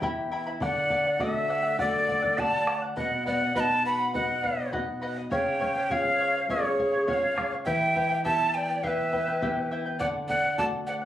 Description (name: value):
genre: andean folk, Andean ensemble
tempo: 102 BPM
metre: 4/4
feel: straight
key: E dorian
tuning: A4 = 438 Hz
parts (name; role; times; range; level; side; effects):
- charango; accompaniment; 0.0-11.1 s; E4 to B5; -32 LUFS; left 3 dB; none
- nylon-string guitar; accompaniment; 0.0-11.1 s; B2 to G4; -34 LUFS; equal; none
- bombo; percussion; 0.0-10.7 s; none; -37 LUFS; right 1 dB; none
- breathy quena; melody; 0.6-10.9 s; C#5 to B5; -26 LUFS; equal; none
- breathy bright polished pan flute; second line; 0.6-10.9 s; G#4 to F#5; -31 LUFS; equal; none
room: moderate studio ambience, RT60 0.5 s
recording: recorded on a phone in the room, club reverb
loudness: -24 LUFS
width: side -12 dB against mid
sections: 0.0-11.1 A section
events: none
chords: 0.0 Em; 0.6 D; 3.0 B; 5.3 C#; 7.7 Em; 10.0 D